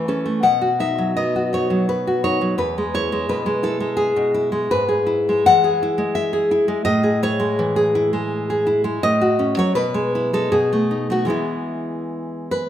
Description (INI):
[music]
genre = romantic piece for solo classical guitar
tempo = 74-87 BPM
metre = 3/4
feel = rubato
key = E major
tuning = A4 = 440 Hz
[part]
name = nylon-string guitar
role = solo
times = 0.0-12.7 s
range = E2 to F#5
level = -17 LUFS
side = left 1 dB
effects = none
[sound]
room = moderate recital hall reverb, RT60 1.8 s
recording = minimal, uncompressed stereo recording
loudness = -17 LUFS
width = side -10 dB against mid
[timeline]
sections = 0.0-12.7 A section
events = none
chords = 0.4 B; 2.6 E; 4.7 E/G#; 6.9 Amaj7; 9.0 F#m/A; 9.8 E/B; 10.5 B7; 11.3 E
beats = | 0.42 1.16 1.89 | 2.60 3.29 3.99 | 4.70 5.47 6.17 | 6.88 7.59 8.31 | 9.04 9.76 10.52 | 11.30 12.11